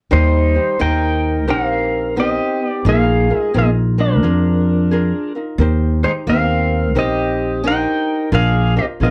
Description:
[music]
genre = Hawaiian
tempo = 88 BPM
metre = 4/4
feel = swing 64% on 8ths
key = Eb major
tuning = A4 = 441 Hz
[part]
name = pedal steel guitar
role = melody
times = 0.1-9.1 s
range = D4 to G5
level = -21 LUFS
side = equal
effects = none
[part]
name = fingerpicked swing-style acoustic guitar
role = second line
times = 0.1-9.1 s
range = F3 to Eb4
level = -25 LUFS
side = equal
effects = none
[part]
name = ukulele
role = accompaniment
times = 0.1-9.1 s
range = D4 to C5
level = -27 LUFS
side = equal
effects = none
[part]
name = upright bass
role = bass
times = 0.1-9.1 s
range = Bb1 to F2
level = -19 LUFS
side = equal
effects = none
[sound]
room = light reverb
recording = dry, close 1970s-style studio recording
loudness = -17 LUFS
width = mono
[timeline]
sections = 0.1-9.1 A section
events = none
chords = 0.1 Eb6; 2.9 Bb7sus4; 5.6 Eb6; 8.3 Bb7

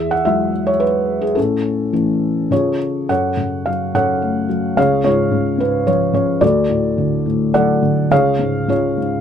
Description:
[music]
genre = classical, lyrical solo piano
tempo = 106 BPM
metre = 3/4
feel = rubato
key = A major, F# harmonic minor from 3.1 s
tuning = A4 = 441 Hz
[part]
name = felt-muted upright piano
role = solo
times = 0.0-9.2 s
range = C#2 to F#5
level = -15 LUFS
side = equal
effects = none
[sound]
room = little or no reverb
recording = close, detailed microphones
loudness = -15 LUFS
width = side -8 dB against mid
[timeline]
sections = 0.0-3.1 A section; 3.1-9.2 B section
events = none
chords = 0.0 Eadd9; 1.4 A; 2.5 C#; 3.1 F#m; 4.8 C#; 6.4 D; 8.1 C#

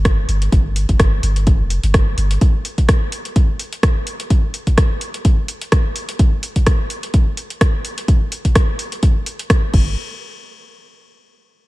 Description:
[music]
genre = minimal techno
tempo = 127 BPM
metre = 4/4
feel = swing 55% on 16ths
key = unclear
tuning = A4 = 445 Hz
[part]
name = punchy sub bass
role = bass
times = 0.0-2.4, 9.7-10.0 s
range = F1 to G1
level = -17 LUFS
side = equal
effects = sidechain pumping
[part]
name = booming analog drum machine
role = drums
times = 0.1-9.8 s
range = crash cymbal, hi-hat, rim click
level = -23 LUFS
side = equal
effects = none
[part]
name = electronic kick drum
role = drums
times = 0.1-9.8 s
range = none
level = -14 LUFS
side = equal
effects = none
[sound]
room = digital ambience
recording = none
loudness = -14 LUFS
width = side -19 dB against mid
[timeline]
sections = 0.0-10.0 A section; 10.0-11.7 B section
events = none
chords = none

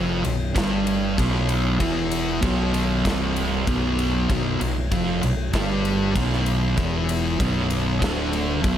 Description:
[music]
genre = stoner and doom metal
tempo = 96 BPM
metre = 4/4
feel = straight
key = unclear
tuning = A4 = 440 Hz
[part]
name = thick fuzz guitar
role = riff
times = 0.0-8.8 s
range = B1 to G3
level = -22 LUFS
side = right 1 dB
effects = distortion
[part]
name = overdriven fingered electric bass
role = bass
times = 0.0-8.8 s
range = B0 to G1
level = -27 LUFS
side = equal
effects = none
[part]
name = big rock drum kit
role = drums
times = 0.2-8.8 s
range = kick drum, ride cymbal, snare drum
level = -27 LUFS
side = left 1 dB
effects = none
[sound]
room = light reverb, small room ambience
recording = none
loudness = -20 LUFS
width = side -10 dB against mid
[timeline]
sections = 0.0-8.8 A section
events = none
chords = 0.0 Bm

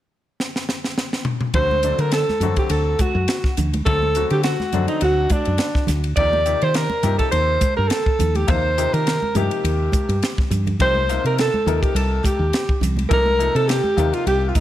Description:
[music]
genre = electric jazz fusion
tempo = 104 BPM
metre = 4/4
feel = swing 55% on 16ths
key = unclear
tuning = A4 = 441 Hz
[part]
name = crisp fusion drum kit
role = drums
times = 0.4-14.6 s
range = hi-hat, kick drum, ride cymbal, snare drum, toms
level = -23 LUFS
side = equal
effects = none
[part]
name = clear grand piano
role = accompaniment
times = 1.5-14.6 s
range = C3 to Bb4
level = -28 LUFS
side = left 10 dB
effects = none
[part]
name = woody fretless electric bass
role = bass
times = 1.5-14.5 s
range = C2 to Eb3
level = -21 LUFS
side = equal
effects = lush chorus
[part]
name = congas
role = percussion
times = 1.5-14.6 s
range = none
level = -29 LUFS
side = right 3 dB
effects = none
[part]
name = warm alto saxophone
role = melody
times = 1.6-14.6 s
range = D4 to D5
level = -21 LUFS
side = equal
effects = slapback echo
[part]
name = hollow-body jazz guitar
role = second line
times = 1.6-14.6 s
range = D4 to D5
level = -29 LUFS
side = right 6 dB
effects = none
[sound]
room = light reverb, small room reverb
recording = none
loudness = -17 LUFS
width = side -13 dB against mid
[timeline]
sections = 0.0-1.5 A section; 1.5-14.6 B section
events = drum fill 0.4-1.5, 10.4-10.8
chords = 0.0 N.C.; 1.5 D7; 6.2 Ebadd9; 10.8 Cm7

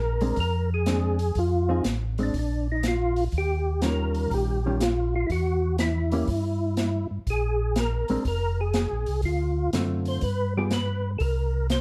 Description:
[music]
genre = soul jazz organ trio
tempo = 122 BPM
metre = 4/4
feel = swing 67% on 8ths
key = Bb mixolydian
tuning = A4 = 441 Hz
[part]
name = percussive tonewheel organ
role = melody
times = 0.0-11.8 s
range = D4 to C5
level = -30 LUFS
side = equal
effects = slow rotary speaker, chorus vibrato
[part]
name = mellow tonewheel organ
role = bass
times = 0.0-11.8 s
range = F1 to G2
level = -29 LUFS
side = equal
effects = chorus vibrato, slow rotary speaker
[part]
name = hollow-body jazz guitar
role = accompaniment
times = 0.2-10.7 s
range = D3 to Ab4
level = -31 LUFS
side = equal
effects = none
[part]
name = open jazz drum kit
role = drums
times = 0.2-11.8 s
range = hi-hat, kick drum, snare drum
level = -34 LUFS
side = equal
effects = none
[sound]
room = light reverb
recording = dark, warm production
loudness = -26 LUFS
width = mono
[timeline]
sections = 0.0-11.8 A section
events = none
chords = 0.0 Bb9; 1.4 Fm7; 2.3 Bbadd11; 3.3 Eb9; 5.3 Em; 7.3 Bb7sus2; 9.2 Dm7; 10.2 G7b9; 11.2 C7(no3)

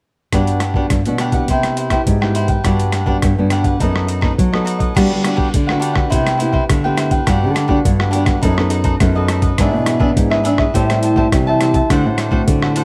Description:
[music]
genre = samba and choro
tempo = 104 BPM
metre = 4/4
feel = straight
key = G major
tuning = A4 = 435 Hz
[part]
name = cavaquinho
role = accompaniment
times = 0.3-12.8 s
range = D4 to A5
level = -23 LUFS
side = equal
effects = none
[part]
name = nylon-string guitar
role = accompaniment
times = 0.3-12.8 s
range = G2 to A4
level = -23 LUFS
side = equal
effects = none
[part]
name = nylon-string guitar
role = bass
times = 0.3-12.8 s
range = F#2 to G3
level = -20 LUFS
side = equal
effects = none
[part]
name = boom bap sampler-style drum kit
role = drums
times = 0.3-12.8 s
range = crash cymbal, hi-hat, kick drum, rim click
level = -21 LUFS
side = equal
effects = none
[sound]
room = light reverb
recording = none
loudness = -16 LUFS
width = mono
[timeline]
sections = 0.3-5.0 A section; 5.0-12.8 B section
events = none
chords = 0.3 Gmaj7; 1.5 Cmaj7; 2.6 Gmaj7; 3.8 B7/F#; 5.0 Gmaj7; 6.1 Cmaj7; 7.3 Gmaj7; 8.4 B7/F#; 9.6 E7/G#; 10.7 Am7; 11.9 D7

